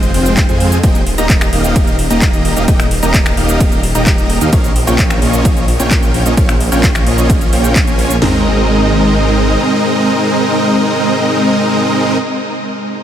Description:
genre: EDM, festival progressive house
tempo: 130 BPM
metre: 4/4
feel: straight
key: Ab major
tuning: A4 = 440 Hz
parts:
  - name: dense compressed supersaw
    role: riff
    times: 0.0-12.2 s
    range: Ab3 to Bb5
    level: -14 LUFS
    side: equal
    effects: sidechain pumping, tape echo
  - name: wide detuned saw bass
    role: bass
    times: 0.0-9.6 s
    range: Eb1 to F2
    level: -16 LUFS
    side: equal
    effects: chorus, sidechain pumping
  - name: house drum kit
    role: drums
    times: 0.0-8.2 s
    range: cabasa, finger snaps, handclaps, hi-hat, ride cymbal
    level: -20 LUFS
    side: equal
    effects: overdrive
  - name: house drum kit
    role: drums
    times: 0.4-8.3 s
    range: hi-hat, kick drum, snare drum, toms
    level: -13 LUFS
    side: equal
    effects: overdrive
room: moderate huge ambient reverb, RT60 7.9 s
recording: dreamy mix soaked in reverb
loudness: -10 LUFS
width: side -10 dB against mid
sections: 0.0-8.2 A section; 8.2-11.9 B section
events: drop 0.0-8.2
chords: 0.0 Fm; 0.8 Eb; 4.5 Bbm; 8.2 Abadd9

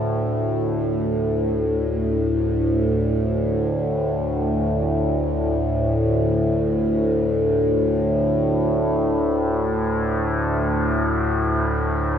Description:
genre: ambient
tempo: free time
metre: none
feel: none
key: unclear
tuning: A4 = 440 Hz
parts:
  - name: overtone-sweeping drone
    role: solo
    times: 0.0-12.2 s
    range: D2 to A2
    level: -19 LUFS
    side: equal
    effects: chorus, built-in reverb, diffuse ambient delay
room: wet cathedral reverb, RT60 6.6 s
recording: in a vast, echoing space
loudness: -19 LUFS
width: side -8 dB against mid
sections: 0.0-1.7 A section; 1.7-12.2 A section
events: none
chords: 0.0 D5

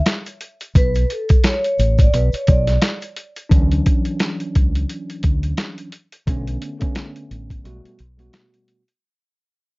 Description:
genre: hip hop, boom-bap hip-hop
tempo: 87 BPM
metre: 4/4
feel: swing 56% on 16ths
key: D major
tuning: A4 = 440 Hz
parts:
  - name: vibraphone with soft mallets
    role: melody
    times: 0.0-2.8 s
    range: A4 to D5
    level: -22 LUFS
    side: equal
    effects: high-pass filter, low-pass filter
  - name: boom bap sampler-style drum kit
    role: drums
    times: 0.1-9.0 s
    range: hi-hat, kick drum, snare drum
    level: -17 LUFS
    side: equal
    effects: none
  - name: tube shaker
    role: percussion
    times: 0.1-3.5 s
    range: none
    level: -46 LUFS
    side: left 3 dB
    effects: none
  - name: deep dub fingered electric bass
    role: bass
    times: 0.8-8.3 s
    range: A1 to D2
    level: -19 LUFS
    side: equal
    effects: none
  - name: mellow tine electric piano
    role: accompaniment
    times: 3.5-8.8 s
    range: B2 to F#4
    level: -27 LUFS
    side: equal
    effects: medium stereo tremolo, cassette tape, high-pass filter, low-pass filter
room: little or no reverb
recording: worn, warbling old tape, cassette tape, warbly pitch drift, nothing above 7.6 kHz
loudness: -16 LUFS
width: side -24 dB against mid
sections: 0.0-3.5 A section; 3.5-9.0 B section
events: break 0.0-3.5, 7.7-9.0; fade-out 3.5-9.0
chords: 0.0 N.C.; 0.8 Aadd9; 2.1 Bm; 3.5 Dmaj9; 6.3 Bm9; 7.7 Gmaj9/B

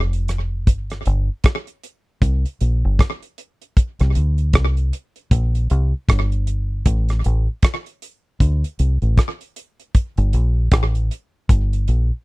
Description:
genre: lovers rock reggae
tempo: 78 BPM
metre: 4/4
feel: swing 60% on 16ths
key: G minor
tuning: A4 = 442 Hz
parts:
  - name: deep dub fingered electric bass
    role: bass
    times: 0.0-12.1 s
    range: F1 to D2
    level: -18 LUFS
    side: equal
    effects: none
  - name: damped 70s drum kit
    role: drums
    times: 0.1-12.1 s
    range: hi-hat, kick drum, rim click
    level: -16 LUFS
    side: equal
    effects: slapback echo
room: little or no reverb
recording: dry, close 1970s-style studio recording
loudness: -17 LUFS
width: side -23 dB against mid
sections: 0.0-12.2 A section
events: none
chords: none

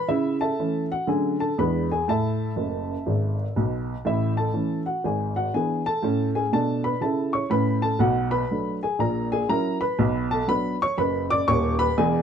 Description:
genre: jazz, stride piano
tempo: 121 BPM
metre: 4/4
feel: swing 64% on 8ths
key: A major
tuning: A4 = 440 Hz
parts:
  - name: warm upright piano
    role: solo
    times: 0.0-12.2 s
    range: D#1 to D6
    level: -22 LUFS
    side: equal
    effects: none
room: light reverb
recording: close, detailed microphones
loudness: -22 LUFS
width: side -8 dB against mid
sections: 0.0-4.0 A section; 4.0-12.2 A section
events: upright piano fill 2.6-4.0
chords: 0.1 A/C#; 1.1 Dmaj7; 1.6 E7; 2.1 A5; 4.0 A; 5.0 E7/G#; 6.0 A; 8.0 Bm7; 9.0 F#7/A#; 10.0 Bm

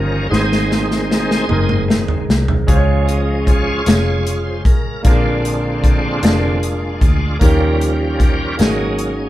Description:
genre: slow gospel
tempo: 51 BPM (dotted quarters)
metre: 6/8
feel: straight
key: Db major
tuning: A4 = 441 Hz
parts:
  - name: clear concert grand piano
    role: accompaniment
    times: 0.0-9.3 s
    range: Ab2 to Db5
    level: -21 LUFS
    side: right 1 dB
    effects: none
  - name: bright tonewheel organ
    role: sustained chords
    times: 0.0-9.3 s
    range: D3 to Eb5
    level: -21 LUFS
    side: right 1 dB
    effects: slow rotary speaker, chorus vibrato
  - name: vintage muted fingered electric bass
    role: bass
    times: 0.0-9.3 s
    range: F1 to Eb2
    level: -19 LUFS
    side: equal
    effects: none
  - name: natural country drum kit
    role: drums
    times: 0.3-9.2 s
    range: hi-hat, kick drum, snare drum, toms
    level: -16 LUFS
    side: equal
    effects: none
room: light reverb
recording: band playing live in one room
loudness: -13 LUFS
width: side -14 dB against mid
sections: 0.0-9.3 A section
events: tonewheel organ solo 0.0-9.3; drum fill 0.3-2.7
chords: 0.3 Ab; 2.7 Db; 5.0 Bb7; 7.4 Eb7; 8.6 Ab9sus4

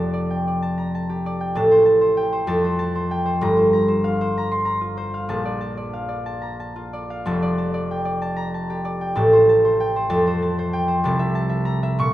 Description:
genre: classical, solo harp piece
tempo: 64 BPM (dotted quarters)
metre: 6/8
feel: rubato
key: F major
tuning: A4 = 443 Hz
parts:
  - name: concert harp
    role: solo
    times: 0.0-12.1 s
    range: F1 to Db6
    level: -18 LUFS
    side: equal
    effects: none
room: moderate recital hall reverb, RT60 1.5 s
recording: none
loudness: -18 LUFS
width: side -14 dB against mid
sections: 0.0-12.1 A section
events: none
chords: 0.0 F69; 1.6 Am7; 2.5 Fadd9; 3.4 Gm11; 5.3 Bbmaj7; 7.3 F69; 9.2 Am7; 10.1 Fadd9; 11.1 C6

